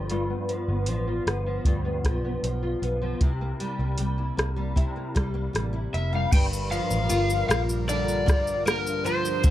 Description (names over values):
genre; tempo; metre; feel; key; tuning
indie pop, bedroom pop; 77 BPM; 4/4; straight; unclear; A4 = 438 Hz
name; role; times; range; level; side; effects
nylon-string guitar; accompaniment; 0.0-9.5 s; G2 to F4; -29 LUFS; left 1 dB; ensemble chorus, warbly pitch drift, low-pass filter, plate reverb
vintage muted picked electric bass; bass; 0.0-9.5 s; F1 to D2; -29 LUFS; equal; none
soft vintage rhythm box; drums; 0.1-9.5 s; crash cymbal, hi-hat, kick drum, ride cymbal, rim click, shaker; -24 LUFS; equal; overdrive
overdriven slide guitar; melody; 5.9-9.5 s; Bb4 to G5; -27 LUFS; left 2 dB; wide subtle chorus, plate reverb
phased analog pad; sustained chords; 6.3-9.5 s; D3 to Bb4; -34 LUFS; right 3 dB; phaser, chorus, plate reverb
room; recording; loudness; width
light reverb; dark, warm production; -23 LUFS; side -13 dB against mid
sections
0.0-6.3 A section; 6.3-9.5 B section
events
none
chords
0.0 G7; 3.2 C7; 6.3 Gm7